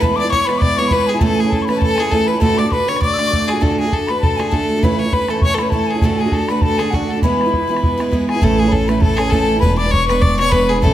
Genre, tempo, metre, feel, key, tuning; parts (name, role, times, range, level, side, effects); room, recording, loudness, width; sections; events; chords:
celtic folk, Celtic reel; 200 BPM; 4/4; swing 55% on 8ths; E mixolydian; A4 = 440 Hz
bright fiddle; melody; 0.0-10.9 s; F#4 to D5; -19 LUFS; left 1 dB
wooden whistle; second line; 0.0-10.9 s; F#5 to E6; -22 LUFS; left 5 dB
picked steel-string acoustic guitar; accompaniment; 0.0-10.9 s; D2 to F#4; -19 LUFS; right 3 dB
bodhran; percussion; 0.0-10.9 s; -19 LUFS; equal
upright bass; bass; 8.4-10.9 s; E1 to A1; -20 LUFS; left 1 dB
wet recital hall reverb, RT60 1.3 s; -13 LUFS; side -12 dB against mid
0.0-8.4 A section; 8.4-10.9 A section
0.0 E; 1.2 A; 2.4 D; 4.8 A/C#; 6.0 D; 7.2 E; 8.4 A; 9.6 E7